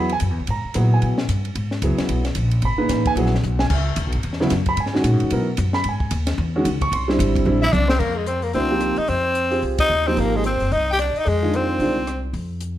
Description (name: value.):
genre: modal jazz.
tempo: 223 BPM.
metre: 4/4.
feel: swing 60% on 8ths.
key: C# dorian, F dorian from 8.0 s.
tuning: A4 = 440 Hz.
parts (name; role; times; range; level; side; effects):
warm concert grand piano; accompaniment; 0.0-12.0 s; A#2 to C#6; -22 LUFS; right 1 dB; none.
upright bass; bass; 0.0-12.8 s; Gb1 to B2; -22 LUFS; equal; none.
compact cocktail drum kit; drums; 0.1-12.7 s; crash cymbal, hi-hat, kick drum, ride cymbal, rim click, snare drum, toms; -27 LUFS; left 1 dB; none.
growling tenor saxophone; melody; 7.6-12.2 s; Ab3 to G4; -22 LUFS; equal; none.
dark alto saxophone; second line; 7.6-12.2 s; Ab4 to G5; -26 LUFS; left 4 dB; none.
room: light reverb.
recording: none.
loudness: -18 LUFS.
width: side -12 dB against mid.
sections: 0.0-8.0 A section; 8.0-12.8 B section.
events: drum fill 3.4, 7.5-8.0; band accent 9.8.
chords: 0.0 C#m7 (rootless); 3.7 E; 6.9 C7b13; 8.0 Fm11.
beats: 0.21 | 0.48 0.75 1.02 1.28 | 1.55 1.82 2.09 2.36 | 2.63 2.90 3.16 3.43 | 3.70 3.97 4.24 4.51 | 4.78 5.05 5.32 5.58 | 5.85 6.12 6.39 6.66 | 6.93 7.20 7.47 7.74 | 8.01 8.28 8.55 8.82 | 9.09 9.37 9.64 9.91 | 10.18 10.45 10.72 10.99 | 11.26 11.53 11.80 12.07 | 12.35 12.62.